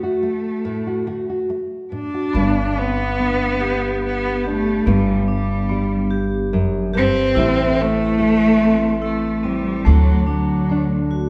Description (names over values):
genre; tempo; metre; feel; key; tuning
acoustic folk-pop ballad; 72 BPM; 3/4; straight; G major; A4 = 440 Hz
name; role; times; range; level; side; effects
warm cello; melody; 0.0-11.1 s; F#3 to D4; -22 LUFS; equal; none
nylon-string guitar; accompaniment; 0.0-11.3 s; F#2 to F#4; -25 LUFS; equal; none
vibraphone with medium hard mallets; arpeggios; 2.3-11.3 s; A3 to G4; -27 LUFS; equal; none
upright bass; bass; 2.3-11.3 s; G1 to D2; -25 LUFS; equal; none
room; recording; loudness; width
wet recital hall reverb, RT60 1.7 s; recorded in a church or concert hall; -19 LUFS; mono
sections
0.0-2.3 A section; 2.3-11.3 B section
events
none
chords
0.0 D; 2.3 G; 4.9 Gmaj7; 7.4 Am; 9.9 D